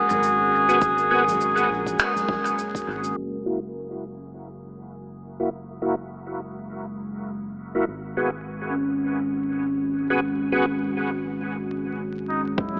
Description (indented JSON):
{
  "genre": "ambient dub",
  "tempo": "102 BPM",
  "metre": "4/4",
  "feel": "swing 57% on 16ths",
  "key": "unclear",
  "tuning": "A4 = 439 Hz",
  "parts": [
    { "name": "trumpet with cup mute", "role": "melody", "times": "0.0-2.6, 12.3-12.8 s", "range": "D#4 to G#4", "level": "-24 LUFS", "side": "equal", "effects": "dub echo" },
    { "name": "deep dark ambient pad", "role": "sustained chords", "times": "0.0-12.8 s", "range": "G#3 to A#4", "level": "-34 LUFS", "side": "equal", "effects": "chorus, built-in reverb, vintage 12-bit sampler grit" },
    { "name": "round analog bass", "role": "bass", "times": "0.1-12.8 s", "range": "F#1 to A#1", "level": "-38 LUFS", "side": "equal", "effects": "none" },
    { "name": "soft-mallet drum kit", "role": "drums", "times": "0.1-3.1, 12.8 s", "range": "cabasa, finger snaps, toms", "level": "-33 LUFS", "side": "equal", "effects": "dub echo" },
    { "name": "overdriven tonewheel organ", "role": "stabs", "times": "0.7-10.7 s", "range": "A#3 to G#4", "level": "-30 LUFS", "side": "equal", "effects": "chorus vibrato, slow rotary speaker, low-pass filter, dub echo" },
    { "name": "electronic kick drum", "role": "drums", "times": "0.8-2.8, 12.6-12.7 s", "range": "none", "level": "-32 LUFS", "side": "equal", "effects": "none" },
    { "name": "vibraphone with medium mallets", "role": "arpeggios", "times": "8.7-12.6 s", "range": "C#4", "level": "-29 LUFS", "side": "equal", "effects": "dub echo" }
  ],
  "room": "moderate huge ambient reverb, RT60 4.2 s",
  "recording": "vinyl crackle, low-pass filter, AM radio sound",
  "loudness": "-25 LUFS",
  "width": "mono",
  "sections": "0.0-3.2 A section; 3.2-12.6 B section",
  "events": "filter sweep on ambient pad 3.2-12.6; filter sweep on tonewheel organ 3.2-12.6; filter sweep 3.2-12.6",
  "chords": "0.0 G#m7; 3.2 F#7; 7.9 G#m7"
}